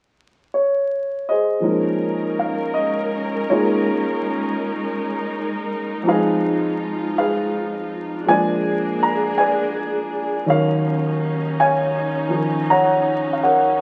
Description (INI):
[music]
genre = jazz ballad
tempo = 54 BPM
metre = 4/4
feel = swing 68% on 8ths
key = Bb minor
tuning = A4 = 440 Hz
[part]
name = dark concert grand piano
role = accompaniment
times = 0.5-13.8 s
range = Eb2 to Bb5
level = -21 LUFS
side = equal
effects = none
[part]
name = warm symphonic string section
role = sustained chords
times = 1.6-13.8 s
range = Ab3 to Bb4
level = -28 LUFS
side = equal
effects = none
[sound]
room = wet studio reverb, RT60 0.7 s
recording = very old 78 rpm record, vinyl crackle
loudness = -20 LUFS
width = mono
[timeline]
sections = 0.0-1.6 A section; 1.6-13.8 B section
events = none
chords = 0.0 Abadd11; 1.6 Bbm11; 6.0 Fm7b5; 8.3 Bb7b9; 10.4 Ebm9